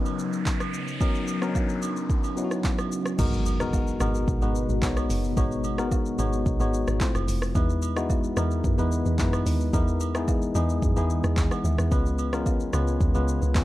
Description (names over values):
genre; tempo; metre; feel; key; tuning
amapiano; 110 BPM; 4/4; straight; G# minor; A4 = 437 Hz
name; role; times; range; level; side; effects
tine electric piano; accompaniment; 0.0-13.6 s; F#3 to F#5; -28 LUFS; left 2 dB; none
glassy FM pad; sustained chords; 0.0-13.6 s; B2 to F#4; -34 LUFS; right 1 dB; ensemble chorus, built-in reverb, phaser, sidechain pumping
noise sweep and impact; sound effects; 0.0-5.4 s; none; -36 LUFS; right 1 dB; none
deep house drum kit; drums; 0.1-13.6 s; crash cymbal, handclaps, hi-hat, kick drum, rim click, shaker; -27 LUFS; equal; none
agogo bells and woodblock; percussion; 0.1-13.3 s; none; -39 LUFS; right 11 dB; none
deep log drum bass; bass; 3.2-13.6 s; F1 to F#2; -26 LUFS; equal; none
room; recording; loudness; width
digital ambience; dark, warm production; -23 LUFS; side -16 dB against mid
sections
0.0-3.2 A section; 3.2-13.6 B section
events
noise sweep 0.0-3.2; drop 3.2-13.6; impact 3.2-5.4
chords
0.0 Bmaj9; 3.2 G#m9; 7.0 Fmaj7; 7.6 Emaj7; 11.9 C#7